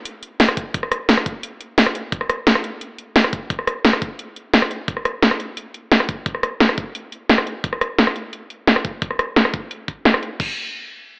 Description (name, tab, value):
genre	drum and bass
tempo	174 BPM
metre	4/4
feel	straight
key	none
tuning	none
part	drum and bass drum kit	drums	0.1-10.5 s	crash cymbal, hi-hat, rim click, snare drum	-17 LUFS	equal	low-pass filter on hats, low-pass filter on snare, low-pass filter on cymbals, low-pass filter on room
part	electronic kick drum	drums	0.6-10.5 s	none	-25 LUFS	equal	none
room	light reverb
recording	AM radio sound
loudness	-17 LUFS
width	side -27 dB against mid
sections	0.0-10.4 A section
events	none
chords	none